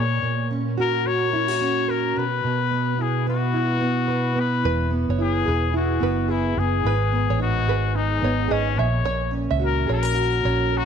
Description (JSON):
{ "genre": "pop", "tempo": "108 BPM", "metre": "4/4", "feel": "swing 60% on 16ths", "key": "unclear", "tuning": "A4 = 440 Hz", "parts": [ { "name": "bright trumpet", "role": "melody", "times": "0.0-10.8 s", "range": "C#4 to C#5", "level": "-25 LUFS", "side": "left 10 dB", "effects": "none" }, { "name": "fingerpicked plugged-in steel-string acoustic guitar", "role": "accompaniment", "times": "0.0-10.8 s", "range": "G#2 to B4", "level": "-23 LUFS", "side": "right 2 dB", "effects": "double-tracked left and right" }, { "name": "vintage muted fingered electric bass", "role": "bass", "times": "4.6-10.8 s", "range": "E1 to C#2", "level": "-23 LUFS", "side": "right 1 dB", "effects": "none" }, { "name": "open-back banjo", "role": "arpeggios", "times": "4.7-10.8 s", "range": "B4 to E5", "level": "-30 LUFS", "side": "right 12 dB", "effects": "none" } ], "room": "light reverb, studio reverb", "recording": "1960s-style stereo with parts hard left and right", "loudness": "-20 LUFS", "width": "side -7 dB against mid", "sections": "0.0-10.8 A section", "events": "none", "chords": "0.0 F#/A#; 2.2 Bsus4; 4.6 E; 6.9 G#m7; 8.8 F#7/A#" }